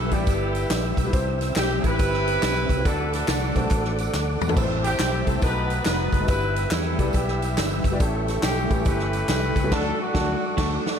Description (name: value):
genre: uptempo gospel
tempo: 140 BPM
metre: 4/4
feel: swing 64% on 8ths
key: unclear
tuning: A4 = 440 Hz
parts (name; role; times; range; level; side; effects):
- warm horn section; melody; 0.0-10.8 s; A3 to B4; -27 LUFS; equal; ping-pong delay
- warm upright piano; accompaniment; 0.0-10.8 s; G2 to D5; -30 LUFS; left 2 dB; none
- tonewheel organ; sustained chords; 0.0-11.0 s; C4 to E6; -31 LUFS; right 2 dB; slow rotary speaker, chorus vibrato
- fingered electric bass; bass; 0.0-10.8 s; F1 to E2; -27 LUFS; equal; none
- swinging big-band drum kit; drums; 0.1-11.0 s; crash cymbal, hi-hat, kick drum, snare drum, toms; -25 LUFS; equal; none
- tambourine and handclaps; percussion; 0.1-9.6 s; none; -38 LUFS; left 1 dB; none
- clean electric guitar; second line; 9.7-10.8 s; F#3 to F#4; -34 LUFS; right 10 dB; none
room: moderate huge ambient reverb, RT60 4.4 s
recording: dreamy mix soaked in reverb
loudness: -20 LUFS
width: side -7 dB against mid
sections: 0.0-11.0 A section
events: drum fill 4.1-4.6, 10.6-11.0; band accent 9.7-11.0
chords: 0.0 Em/G; 1.1 C; 2.9 D; 4.6 Am; 5.4 B7; 6.3 Em/G; 8.0 A7; 9.7 D